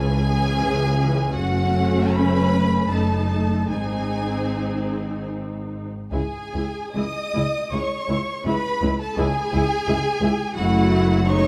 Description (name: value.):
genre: classical, slow romantic movement for string orchestra.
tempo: 68-88 BPM.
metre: 3/4.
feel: rubato.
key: C# minor.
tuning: A4 = 437 Hz.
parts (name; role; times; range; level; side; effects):
rich studio violin section; melody; 0.0-11.5 s; F#5 to D#6; -31 LUFS; equal; none.
warm studio violin section; second line; 0.0-11.5 s; F#4 to D#5; -30 LUFS; equal; none.
rich studio viola section; accompaniment; 0.0-11.5 s; E3 to E4; -28 LUFS; equal; none.
rich studio cello section; bass; 0.0-11.5 s; C#2 to G#2; -28 LUFS; equal; none.
rich studio double bass section; bass; 0.0-11.5 s; F#1 to C#2; -28 LUFS; equal; none.
room: moderate scoring stage reverb, RT60 2.1 s.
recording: dark, warm production.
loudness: -22 LUFS.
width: mono.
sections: 0.0-11.5 A section.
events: none.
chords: 0.0 C#m; 1.4 F#m; 2.9 D#dim/F#; 3.7 G#; 6.1 C#m; 10.6 F#m7.